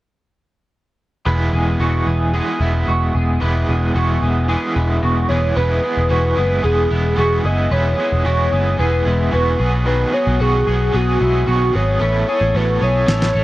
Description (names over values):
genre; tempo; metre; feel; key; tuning
jangly indie pop; 112 BPM; 4/4; straight; E major; A4 = 440 Hz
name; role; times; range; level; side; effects
crunchy overdriven guitar; accompaniment; 1.3-13.4 s; B2 to C#5; -22 LUFS; right 2 dB; tremolo
clean electric guitar; arpeggios; 1.3-13.4 s; G#3 to B4; -23 LUFS; equal; analog chorus, slapback echo
vintage muted picked electric bass; bass; 1.3-13.4 s; E1 to B1; -18 LUFS; equal; none
warbly nostalgic lead; melody; 5.3-13.4 s; F#4 to D#5; -20 LUFS; equal; chorus, tremolo, slapback echo
electronic snare drum; drums; 13.1-13.3 s; none; -19 LUFS; equal; none
room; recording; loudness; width
little or no reverb; dry, close 1970s-style studio recording; -15 LUFS; side -17 dB against mid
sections
1.3-5.6 A section; 5.6-13.4 B section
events
drum fill 13.1-13.4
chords
1.3 E; 9.6 B6; 12.0 Aadd9